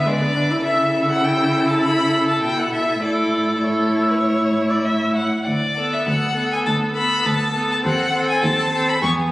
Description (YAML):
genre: quick classical-period movement for string quartet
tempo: 101 BPM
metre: 4/4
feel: rubato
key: unclear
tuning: A4 = 440 Hz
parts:
  - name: rich violin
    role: melody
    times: 0.0-9.1 s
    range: C#5 to C#6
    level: -22 LUFS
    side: left 2 dB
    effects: none
  - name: warm violin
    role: second line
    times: 0.0-9.3 s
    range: G#4 to F#5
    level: -25 LUFS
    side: equal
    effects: none
  - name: rich viola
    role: accompaniment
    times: 0.0-9.3 s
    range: G#3 to E4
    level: -21 LUFS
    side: equal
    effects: none
  - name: warm cello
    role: bass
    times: 0.0-9.3 s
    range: D2 to D3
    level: -23 LUFS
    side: equal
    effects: none
room: moderate scoring stage reverb, RT60 2.0 s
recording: recorded on a phone in the room, club reverb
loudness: -17 LUFS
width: side -18 dB against mid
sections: 0.0-9.3 A section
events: none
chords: 0.0 E7/D; 0.7 A/C#; 3.0 A; 5.5 Bm7/D; 7.9 D#dim7